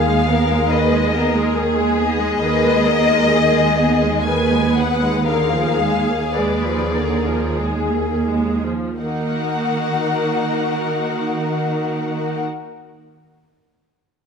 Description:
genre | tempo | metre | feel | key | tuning
classical, slow romantic movement for string orchestra | 41-71 BPM | 3/4 | rubato | Eb minor | A4 = 440 Hz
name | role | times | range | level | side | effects
warm symphonic violin section | melody | 0.0-12.4 s | D5 to Ab5 | -22 LUFS | left 5 dB | none
rich symphonic violin section | second line | 0.0-12.4 s | Gb4 to Cb5 | -23 LUFS | left 5 dB | none
rich symphonic viola section | accompaniment | 0.0-12.4 s | D3 to Ab4 | -22 LUFS | right 1 dB | none
rich symphonic cello section | bass | 0.0-12.4 s | Eb2 to Eb3 | -20 LUFS | right 4 dB | none
room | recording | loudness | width
light reverb | close, detailed microphones | -16 LUFS | side -6 dB against mid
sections
0.0-9.0 A section; 9.0-13.2 B section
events
slowing down 1.1-9.0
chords
0.0 Abm/Eb; 5.3 Bb7/Eb; 9.0 Ebm

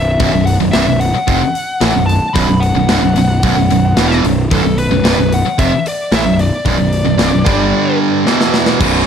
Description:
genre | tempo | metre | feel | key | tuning
heavy metal | 112 BPM | 4/4 | straight | B minor | A4 = 441 Hz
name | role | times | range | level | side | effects
high-gain lead guitar | melody | 0.0-8.0 s | A4 to B5 | -19 LUFS | left 2 dB | distortion, ping-pong delay
fuzz picked electric bass | bass | 0.0-9.1 s | B0 to A1 | -17 LUFS | equal | overdrive
distorted electric guitar | riff | 0.2-9.1 s | B1 to G3 | -16 LUFS | right 11 dB | overdrive
heavy high-gain guitar | riff | 0.2-9.1 s | B1 to G3 | -17 LUFS | left 9 dB | distortion
tight metal drum kit | drums | 0.2-8.9 s | crash cymbal, hi-hat, kick drum, snare drum | -18 LUFS | left 1 dB | none
room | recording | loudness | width
small room reverb | dark, warm production | -11 LUFS | side -8 dB against mid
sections
0.0-8.8 A section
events
drum fill 8.3-8.8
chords
0.0 B5; 7.5 G5; 8.3 E5

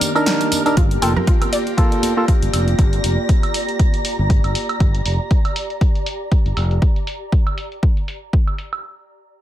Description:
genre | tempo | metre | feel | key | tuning
deep house | 119 BPM | 4/4 | swing 56% on 16ths | G minor | A4 = 440 Hz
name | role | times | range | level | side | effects
airy breathy pad | sustained chords | 0.0-4.8 s | Eb3 to D5 | -26 LUFS | right 2 dB | chorus, sidechain pumping
percussive organ stab | stabs | 0.0-2.3 s | Bb3 to Bb4 | -20 LUFS | right 1 dB | chorus, cassette tape, sidechain pumping, dub echo
punchy analog drum machine | drums | 0.0-8.8 s | hi-hat, snare drum, tambourine, woodblock | -25 LUFS | right 1 dB | low-pass filter on hats, low-pass filter on perc, low-pass filter on snare, low-pass filter on room
congas | percussion | 0.0-2.6 s | none | -28 LUFS | right 2 dB | none
ethereal airy pad | texture | 0.0-6.8 s | C4 to Bb5 | -28 LUFS | left 1 dB | ensemble chorus, built-in reverb, sidechain pumping
soft string machine | texture | 0.0-6.8 s | F6 to Bb6 | -32 LUFS | right 1 dB | phaser, ensemble chorus, sidechain pumping
analog pluck | arpeggios | 0.8-2.3 s | F4 to G5 | -26 LUFS | equal | chorus, sidechain pumping, dub echo
fingered electric bass | bass | 0.8-6.8 s | F1 to G1 | -19 LUFS | equal | tube saturation, sidechain pumping
electronic kick drum | drums | 0.8-8.4 s | none | -16 LUFS | equal | overdrive
room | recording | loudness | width
little or no reverb | none | -15 LUFS | side -13 dB against mid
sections
0.8-8.8 A section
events
break 0.0-0.8; filter sweep on drum 0.8-8.8; filter sweep on analog synth pad 0.8-4.8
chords
0.0 Cm9; 0.8 Gm9

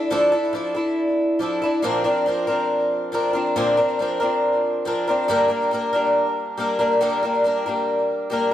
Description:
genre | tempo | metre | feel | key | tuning
rock | 139 BPM | 4/4 | straight | unclear | A4 = 440 Hz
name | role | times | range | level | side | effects
picked twelve-string acoustic guitar | solo | 0.0-8.5 s | G2 to Bb4 | -19 LUFS | equal | digital delay
room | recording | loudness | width
moderate studio reverb, RT60 0.8 s | none | -19 LUFS | side -11 dB against mid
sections
0.0-8.5 A section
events
none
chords
0.0 Dmadd9; 1.8 Bbadd9; 5.3 Gm

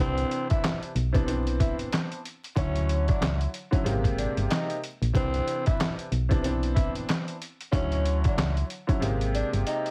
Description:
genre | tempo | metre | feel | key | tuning
hip hop, boom-bap hip-hop | 93 BPM | 4/4 | swing 59% on 16ths | unclear | A4 = 440 Hz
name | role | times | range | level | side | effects
growling tenor saxophone | melody | 0.0-9.9 s | C4 to E4 | -34 LUFS | equal | high-pass filter, low-pass filter, slapback echo
warm upright piano | accompaniment | 0.0-9.9 s | C3 to C#5 | -34 LUFS | equal | cassette tape, high-pass filter, low-pass filter
solid FM bass | bass | 0.0-9.6 s | G1 to D2 | -30 LUFS | equal | none
trip hop sampler-style drum kit | drums | 0.2-9.9 s | handclaps, hi-hat, kick drum, snare drum | -30 LUFS | equal | none
room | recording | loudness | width
light reverb | heavily compressed radio sound, vinyl crackle | -27 LUFS | mono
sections
0.0-9.9 A section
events
drum fill 9.0-9.9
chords
0.0 Cmaj9; 2.6 Dmaj9; 3.9 Abmaj9; 5.1 Cmaj9; 7.7 Dmaj9; 9.0 Abmaj9

